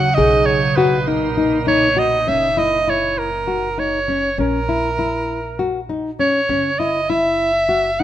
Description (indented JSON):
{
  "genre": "contemporary instrumental, chamber music in an uneven meter",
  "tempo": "200 BPM (eighths)",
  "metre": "7/8",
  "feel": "straight",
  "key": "F# mixolydian",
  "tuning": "A4 = 441 Hz",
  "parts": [
    { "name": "mellow soprano saxophone", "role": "melody", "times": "0.0-8.0 s", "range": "A#4 to F#5", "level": "-18 LUFS", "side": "right 2 dB", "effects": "none" },
    { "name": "icy glass pad", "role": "sustained chords", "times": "0.0-2.3 s", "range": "A#2 to D#4", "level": "-24 LUFS", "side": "right 2 dB", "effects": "chorus, built-in reverb" },
    { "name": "nylon-string guitar", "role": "arpeggios", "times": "0.0-8.0 s", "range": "C#4 to G#4", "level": "-20 LUFS", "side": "left 4 dB", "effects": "none" },
    { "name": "upright bass", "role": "bass", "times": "0.0-8.0 s", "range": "F#1 to D#2", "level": "-28 LUFS", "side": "right 2 dB", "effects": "none" }
  ],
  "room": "light reverb",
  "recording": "nothing above 10.4 kHz",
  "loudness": "-15 LUFS",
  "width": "side -12 dB against mid",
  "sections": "0.0-2.3 A section; 2.3-8.0 B section",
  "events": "none",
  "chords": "0.2 Bmaj7; 2.3 F#7; 4.4 A#dim; 6.5 F#5"
}